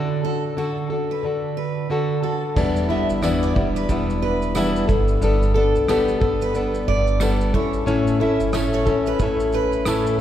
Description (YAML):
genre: acoustic pop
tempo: 90 BPM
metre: 4/4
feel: swing 60% on 16ths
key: unclear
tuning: A4 = 440 Hz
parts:
  - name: fingerpicked plugged-in steel-string acoustic guitar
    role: accompaniment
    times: 0.0-10.2 s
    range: E2 to A4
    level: -20 LUFS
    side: left 1 dB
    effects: none
  - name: picked steel-string acoustic guitar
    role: arpeggios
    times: 0.2-10.0 s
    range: G4 to E5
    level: -29 LUFS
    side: right 4 dB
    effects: none
  - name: upright bass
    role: bass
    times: 2.6-10.2 s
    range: E1 to B1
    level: -25 LUFS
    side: equal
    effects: none
  - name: soft brush drum kit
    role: drums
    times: 2.6-10.2 s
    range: crash cymbal, kick drum, rim click, shaker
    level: -27 LUFS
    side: right 1 dB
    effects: none
  - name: tambourine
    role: percussion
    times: 3.2-10.0 s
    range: none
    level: -40 LUFS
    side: right 7 dB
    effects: none
room: wet cathedral reverb, RT60 4.1 s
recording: recorded in a church or concert hall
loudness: -18 LUFS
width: side -11 dB against mid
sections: 0.0-2.6 A section; 2.6-10.2 B section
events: none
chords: 0.0 D; 2.6 Em7; 4.9 Gadd9; 7.5 A